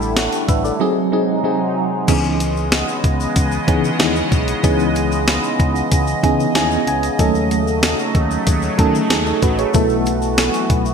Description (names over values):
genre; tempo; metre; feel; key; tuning
1980s-style pop; 94 BPM; 4/4; straight; C# minor; A4 = 441 Hz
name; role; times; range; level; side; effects
FM electric piano with auto-pan; accompaniment; 0.0-10.9 s; E3 to G#5; -19 LUFS; right 1 dB; phaser
sweeping resonant pad; sustained chords; 0.0-10.9 s; B#2 to D#5; -22 LUFS; right 1 dB; chorus
solid FM bass; bass; 0.0-10.9 s; A1 to D#3; -23 LUFS; equal; none
egg shaker; percussion; 0.0-10.9 s; none; -34 LUFS; left 9 dB; none
clean 12-bit digital drum machine; drums; 0.2-10.8 s; crash cymbal, hi-hat, kick drum, snare drum, tambourine; -18 LUFS; equal; gated reverb
room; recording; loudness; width
moderate lush hall reverb, RT60 2.5 s; bright 1980s-style digital production; -15 LUFS; side -6 dB against mid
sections
0.0-2.1 A section; 2.1-10.9 A section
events
FM electric piano fill 5.9-7.2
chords
0.0 A7sus4; 0.8 G#7; 2.1 C#m9; 7.2 D#m7b5; 9.7 B7sus4